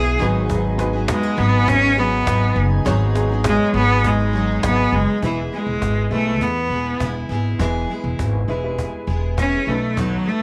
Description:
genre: acoustic pop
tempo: 101 BPM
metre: 4/4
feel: straight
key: E major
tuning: A4 = 440 Hz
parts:
  - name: bright cello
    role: melody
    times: 0.0-10.4 s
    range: E3 to G#4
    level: -22 LUFS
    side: equal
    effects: none
  - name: picked steel-string acoustic guitar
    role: accompaniment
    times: 0.0-10.4 s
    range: G#2 to A4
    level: -29 LUFS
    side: equal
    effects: double-tracked
  - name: warm upright piano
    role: accompaniment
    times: 0.0-10.4 s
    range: G3 to C#5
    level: -32 LUFS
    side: equal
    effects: none
  - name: pedal harmonium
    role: sustained chords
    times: 0.0-5.2 s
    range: D#4 to G#5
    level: -33 LUFS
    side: equal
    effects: none
  - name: nylon-string guitar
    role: arpeggios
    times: 0.0-5.8 s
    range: F#3 to G#4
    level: -33 LUFS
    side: equal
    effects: none
  - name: upright bass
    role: bass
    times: 0.0-10.2 s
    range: E1 to E2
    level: -24 LUFS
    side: equal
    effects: none
  - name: cajon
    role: drums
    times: 0.5-10.1 s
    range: none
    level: -29 LUFS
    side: equal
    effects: none
room: small room ambience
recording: none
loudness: -19 LUFS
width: mono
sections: 0.0-5.2 A section; 5.2-10.4 B section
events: none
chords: 0.2 G#m7; 5.2 E; 9.7 B7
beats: | 0.50 1.09 1.68 2.27 | 2.86 3.45 4.04 4.63 | 5.23 5.82 6.41 7.00 | 7.60 8.19 8.78 9.38 | 9.97

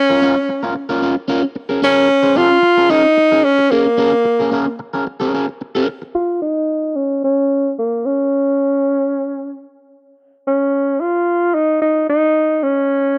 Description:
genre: disco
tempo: 111 BPM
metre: 4/4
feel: straight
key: Bb minor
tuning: A4 = 439 Hz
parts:
  - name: breathy tenor saxophone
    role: melody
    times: 0.0-13.2 s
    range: Bb3 to F4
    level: -16 LUFS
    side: equal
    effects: low-pass filter
  - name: electric guitar at the edge of break-up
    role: accompaniment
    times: 0.1-6.1 s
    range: Db4 to C5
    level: -21 LUFS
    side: equal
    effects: phaser
room: small room ambience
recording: dry, close 1970s-style studio recording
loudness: -16 LUFS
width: mono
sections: 0.0-6.1 A section; 6.1-13.2 B section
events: filter sweep on tenor saxophone 6.1-13.2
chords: 0.0 Bbm; 1.6 Bbm7; 6.1 N.C.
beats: 0.22 0.76 1.30 | 1.83 2.37 2.91 3.44 | 3.98 4.52 5.06 5.60 | 6.14 6.68 7.22 7.76 | 8.30 8.84 9.38 9.92 | 10.46 11.00 11.54 12.09 | 12.63 13.17

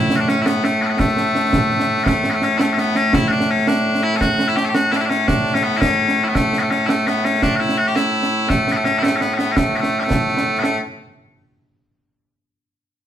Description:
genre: scottish traditional, Scottish pipe music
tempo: 112 BPM (dotted quarters)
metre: 6/8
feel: straight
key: A major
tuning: A4 = 438 Hz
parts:
  - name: loud bright bagpipes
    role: melody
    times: 0.0-10.8 s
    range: A2 to A4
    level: -17 LUFS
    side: left 1 dB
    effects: none
  - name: concert snare drum and concert bass drum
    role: drums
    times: 0.1-10.8 s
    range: none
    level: -21 LUFS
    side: right 2 dB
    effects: none
room: moderate stone room reverb, RT60 1.0 s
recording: band playing live in one room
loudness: -15 LUFS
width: side -10 dB against mid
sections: 0.0-2.1 A section; 2.1-10.6 B section; 10.6-11.7 C section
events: none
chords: none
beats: 0.46 | 0.99 1.53 | 2.06 2.60 | 3.14 3.67 | 4.21 4.74 | 5.28 5.82 | 6.35 6.89 | 7.42 7.96 | 8.49 9.03 | 9.56 10.10 | 10.64

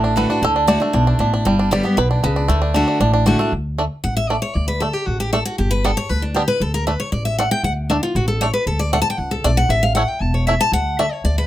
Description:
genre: bluegrass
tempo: 233 BPM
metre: 4/4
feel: straight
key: D major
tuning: A4 = 440 Hz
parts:
  - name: bluegrass banjo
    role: melody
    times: 0.0-11.0 s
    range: G3 to D5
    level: -19 LUFS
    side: right 2 dB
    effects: none
  - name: picked steel-string acoustic guitar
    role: accompaniment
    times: 0.0-11.5 s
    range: G2 to A5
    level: -19 LUFS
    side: left 1 dB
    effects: none
  - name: upright bass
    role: bass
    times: 0.0-11.5 s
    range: E1 to D2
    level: -21 LUFS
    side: equal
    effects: none
room: light reverb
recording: close, detailed microphones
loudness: -16 LUFS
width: side -13 dB against mid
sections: 0.0-3.5 A section; 3.5-11.5 A section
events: five-string banjo solo 0.0-3.5; steel-string acoustic guitar solo 3.5-11.5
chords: 0.0 D; 1.5 G; 2.5 D; 3.5 D5; 5.6 G; 6.6 D5; 9.7 A; 10.7 D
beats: 0.17 | 0.43 0.69 0.94 1.20 | 1.46 1.72 1.97 2.23 | 2.49 2.75 3.00 3.26 | 3.52 3.78 4.04 4.29 | 4.55 4.81 5.07 5.32 | 5.58 5.84 6.10 6.35 | 6.61 6.87 7.13 7.38 | 7.64 7.90 8.16 8.41 | 8.67 8.93 9.19 9.45 | 9.70 9.96 10.22 10.47 | 10.73 10.99 11.25

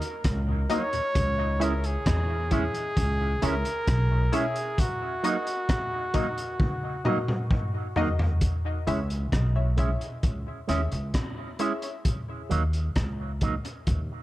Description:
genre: dub reggae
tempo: 66 BPM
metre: 4/4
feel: straight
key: C# dorian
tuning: A4 = 440 Hz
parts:
  - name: clear flugelhorn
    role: melody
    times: 0.0-7.5 s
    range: F#4 to C#5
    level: -31 LUFS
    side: equal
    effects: dub echo
  - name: crunchy breakbeat drum kit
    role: drums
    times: 0.0-14.1 s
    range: hi-hat, kick drum, rim click, toms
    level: -28 LUFS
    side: equal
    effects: none
  - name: upright bass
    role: bass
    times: 0.2-14.1 s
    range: B1 to E2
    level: -27 LUFS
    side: equal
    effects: none
  - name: mellow tonewheel organ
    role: accompaniment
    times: 0.5-1.0 s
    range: D#2 to D#4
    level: -39 LUFS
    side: left 2 dB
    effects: none
  - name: electric guitar with an envelope filter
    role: accompaniment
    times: 0.7-13.5 s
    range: F#3 to E4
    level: -34 LUFS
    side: right 6 dB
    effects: dub echo
  - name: filtered dub chord stab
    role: stabs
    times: 0.7-11.9 s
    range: D#4 to E5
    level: -34 LUFS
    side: left 4 dB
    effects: chorus, dub echo
room: light reverb, studio reverb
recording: none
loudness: -24 LUFS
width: side -16 dB against mid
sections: 0.0-8.4 A section; 8.4-14.2 B section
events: drum fill 6.6-8.4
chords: 0.0 D#m; 1.2 C#m; 4.8 D#m; 8.4 C#m; 12.1 N.C.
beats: 0.24 | 1.15 2.06 2.97 3.87 | 4.78 5.69 6.60 7.51 | 8.42 9.32 10.23 11.14 | 12.05 12.96 13.87

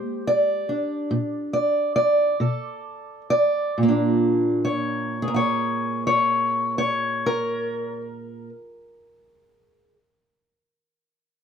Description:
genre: acoustic country blues, solo or duo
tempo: 42-50 BPM (dotted quarters)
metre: 12/8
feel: straight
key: Bb mixolydian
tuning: A4 = 440 Hz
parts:
  - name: fingerpicked steel-string acoustic guitar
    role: solo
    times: 0.0-9.9 s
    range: Bb2 to F5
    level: -21 LUFS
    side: equal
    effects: none
room: light reverb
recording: none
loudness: -20 LUFS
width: side -7 dB against mid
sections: 0.0-3.8 A section; 3.8-9.5 B section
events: slowing down 0.0-3.8; stop 0.0-2.4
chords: 0.0 Bb13; 2.4 Bm7; 3.8 Bb7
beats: 1.09 2.38 | 3.77 5.20 6.64 8.07

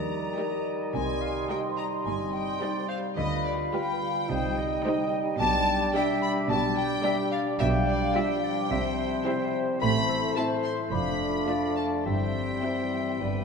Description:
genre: cinematic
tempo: 108 BPM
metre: 4/4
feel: straight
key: C major from 5.4 s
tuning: A4 = 439 Hz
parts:
  - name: rich studio violin section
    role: melody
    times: 0.0-13.4 s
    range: D5 to C6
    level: -34 LUFS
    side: left 3 dB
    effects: none
  - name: worn celesta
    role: melody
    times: 0.0-13.4 s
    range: D5 to C6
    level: -35 LUFS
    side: left 8 dB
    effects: none
  - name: dark cor anglais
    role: second line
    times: 0.0-13.4 s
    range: B4 to F5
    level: -37 LUFS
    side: right 4 dB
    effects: none
  - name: mellow large flute ensemble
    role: second line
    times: 0.0-13.3 s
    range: D5 to C6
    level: -35 LUFS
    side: left 2 dB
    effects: none
  - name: warm clarinet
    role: second line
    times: 0.0-13.4 s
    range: A4 to G5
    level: -36 LUFS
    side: left 1 dB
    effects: none
  - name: mellow bassoon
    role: accompaniment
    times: 0.0-13.4 s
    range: G3 to A3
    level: -35 LUFS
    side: right 3 dB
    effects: none
  - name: mellow French horn section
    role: sustained chords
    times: 0.0-13.4 s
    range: D3 to F4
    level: -32 LUFS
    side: left 1 dB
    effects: none
  - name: concert harp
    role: arpeggios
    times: 0.0-13.4 s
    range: F2 to G5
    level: -35 LUFS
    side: left 6 dB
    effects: none
  - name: rich chamber double bass section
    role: bass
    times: 0.0-13.4 s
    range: F1 to Eb2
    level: -34 LUFS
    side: right 5 dB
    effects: none
  - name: rich studio cello section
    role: bass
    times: 0.0-13.4 s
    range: Eb2 to D3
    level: -35 LUFS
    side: right 5 dB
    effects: none
  - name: rich symphonic violin section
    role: second line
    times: 0.4-13.1 s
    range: G4 to E5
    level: -40 LUFS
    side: left 1 dB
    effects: none
  - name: warm symphonic viola section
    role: accompaniment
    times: 0.4-13.1 s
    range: G3 to F4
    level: -36 LUFS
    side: right 2 dB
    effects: none
room: wet concert hall reverb, RT60 2.1 s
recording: minimal, uncompressed stereo recording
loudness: -25 LUFS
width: side -5 dB against mid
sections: 0.0-13.4 A section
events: none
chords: 0.0 Eb; 0.9 Cm; 3.2 G7/D; 4.3 Cm; 5.4 G/B; 7.6 G7/B; 8.7 C; 9.8 Am; 10.9 Dm/F; 12.1 C/G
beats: 0.38 | 0.94 1.50 2.06 2.62 | 3.17 3.74 4.30 4.86 | 5.41 5.95 6.50 7.04 | 7.60 8.16 8.71 9.26 | 9.81 10.37 10.92 11.48 | 12.06 12.63 13.21

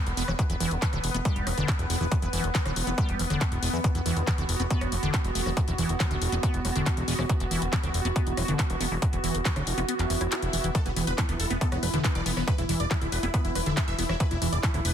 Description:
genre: psychedelic trance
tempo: 139 BPM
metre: 4/4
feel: straight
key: unclear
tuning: A4 = 443 Hz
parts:
  - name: pulsing gated texture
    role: sustained chords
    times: 0.0-14.9 s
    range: E3 to B4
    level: -33 LUFS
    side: right 1 dB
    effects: chorus, built-in reverb, sidechain pumping
  - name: fat analog bass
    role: bass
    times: 0.1-14.9 s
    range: D1 to E2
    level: -29 LUFS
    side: equal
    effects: none
  - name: drum and bass drum kit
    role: drums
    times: 0.1-14.9 s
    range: handclaps, hi-hat, rim click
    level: -32 LUFS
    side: left 2 dB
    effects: none
  - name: liquid acid bass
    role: riff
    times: 0.2-14.8 s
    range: D3 to E4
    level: -32 LUFS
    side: moving between left 3 dB and right 4 dB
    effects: chorus, auto-pan, sidechain pumping, digital delay
  - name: electronic kick drum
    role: drums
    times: 0.4-14.7 s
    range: none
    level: -26 LUFS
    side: equal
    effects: distortion, overdrive
  - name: swell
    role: sound effects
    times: 10.0-10.7 s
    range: none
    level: -38 LUFS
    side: right 3 dB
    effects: none
  - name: dense compressed supersaw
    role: melody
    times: 10.7-14.9 s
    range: B3 to E5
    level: -33 LUFS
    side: equal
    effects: phaser, sidechain pumping, digital delay
room: light reverb, digital ambience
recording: dense, heavily limited modern master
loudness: -24 LUFS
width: side -9 dB against mid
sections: 0.0-14.9 A section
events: kick drops out 9.9-10.7; swell 10.0-10.7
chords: 0.0 E5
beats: | 0.39 0.82 1.25 1.68 | 2.12 2.55 2.98 3.41 | 3.84 4.27 4.71 5.14 | 5.57 6.00 6.43 6.86 | 7.29 7.73 8.16 8.59 | 9.02 9.45 9.88 10.32 | 10.75 11.18 11.61 12.04 | 12.47 12.91 13.34 13.77 | 14.20 14.63

